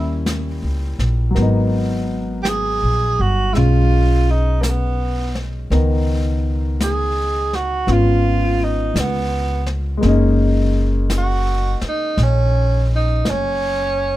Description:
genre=jazz ballad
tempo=56 BPM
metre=4/4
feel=swing 66% on 8ths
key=unclear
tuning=A4 = 440 Hz
part: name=warm tenor saxophone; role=melody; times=0.0-14.2 s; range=Bb3 to Ab4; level=-21 LUFS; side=right 3 dB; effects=none
part: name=warm grand piano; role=accompaniment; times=0.0-14.2 s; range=Eb3 to Bb4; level=-23 LUFS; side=left 3 dB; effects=none
part: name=upright bass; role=bass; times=0.0-14.2 s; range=Gb1 to Eb2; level=-18 LUFS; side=equal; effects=none
part: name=jazz brush drum kit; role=drums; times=0.3-14.2 s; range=brushed snare drum, hi-hat, snare drum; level=-29 LUFS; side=left 1 dB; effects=none
room=little or no reverb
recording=close, detailed microphones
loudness=-16 LUFS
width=side -15 dB against mid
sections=0.0-14.2 A section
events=none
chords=0.0 Eb7b9; 1.4 Abm9; 5.7 Db13; 10.0 Gb69

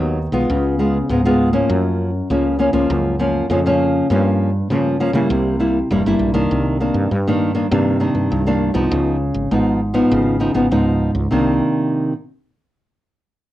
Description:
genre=samba and choro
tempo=100 BPM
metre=4/4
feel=straight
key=C minor from 6.5 s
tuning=A4 = 440 Hz
part: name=nylon-string guitar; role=accompaniment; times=0.0-12.1 s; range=Gb2 to F4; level=-16 LUFS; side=equal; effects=cassette tape
part: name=woody fretless electric bass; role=bass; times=0.0-11.6 s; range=E1 to Db3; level=-22 LUFS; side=right 1 dB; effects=none
room=wet small room ambience, RT60 0.5 s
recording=home recording on cassette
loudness=-15 LUFS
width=side -14 dB against mid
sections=0.0-6.5 A section; 6.5-11.3 B section; 11.3-13.5 C section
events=none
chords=0.5 Db7; 1.7 Gbmaj7; 4.1 Gm7b5; 5.3 C7; 6.5 Cm9; 8.9 Db9; 11.3 Cm9

